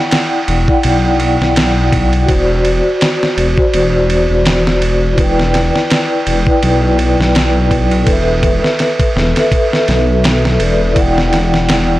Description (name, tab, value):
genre	trip hop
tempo	83 BPM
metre	4/4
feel	swing 56% on 16ths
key	E minor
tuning	A4 = 440 Hz
part	vibraphone with soft mallets	accompaniment	0.0-12.0 s	E4 to G5	-14 LUFS	equal	tremolo, tape echo
part	dusty soul sampler-style drum kit	drums	0.1-11.9 s	kick drum, ride cymbal, snare drum	-15 LUFS	equal	vintage 12-bit sampler grit
part	dark detuned saw bass	bass	0.5-12.0 s	E1 to B1	-14 LUFS	equal	tube saturation
room	light reverb, digital ambience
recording	blown-out, overdriven recording, overdrive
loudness	-10 LUFS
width	side -16 dB against mid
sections	0.0-12.0 A section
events	none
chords	0.0 Em9; 2.3 D7/E; 5.2 Em7; 8.1 B7sus4/E; 11.0 Em9